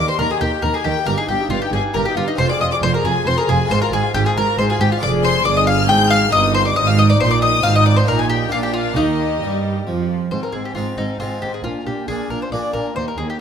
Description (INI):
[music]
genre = classical, baroque-style concerto movement with solo episodes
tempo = 137 BPM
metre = 3/4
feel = straight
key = Eb major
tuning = A4 = 440 Hz
[part]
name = mandolin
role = melody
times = 0.0-13.4 s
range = Eb4 to G5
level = -20 LUFS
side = left 3 dB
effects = none
[part]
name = rich chamber violin section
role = melody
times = 0.0-13.4 s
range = Eb5 to G6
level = -26 LUFS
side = left 5 dB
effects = none
[part]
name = warm chamber violin section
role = second line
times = 0.0-13.4 s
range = C4 to G6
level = -25 LUFS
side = left 4 dB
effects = none
[part]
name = harpsichord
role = accompaniment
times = 0.0-13.4 s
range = Eb2 to Ab4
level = -28 LUFS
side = equal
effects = none
[part]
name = rich studio viola section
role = accompaniment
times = 0.0-13.4 s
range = Bb3 to Bb4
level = -26 LUFS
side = left 2 dB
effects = none
[part]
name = rich chamber double bass section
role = bass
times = 0.0-13.3 s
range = F1 to G2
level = -22 LUFS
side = right 3 dB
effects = none
[part]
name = rich symphonic cello section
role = bass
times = 0.0-13.3 s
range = Eb2 to G3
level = -22 LUFS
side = right 4 dB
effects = none
[sound]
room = light reverb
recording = close, detailed microphones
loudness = -15 LUFS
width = side -8 dB against mid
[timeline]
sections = 0.0-10.3 A section; 10.3-13.4 B section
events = none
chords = 0.0 Eb; 1.1 Eb/G; 2.4 Fm; 3.7 Fm/Ab; 5.0 Ddim/F; 6.3 Eb/G; 7.6 Fm7/Ab; 8.1 Eb/Bb; 8.5 Bb; 9.0 Eb; 10.3 Ab; 11.6 Bb7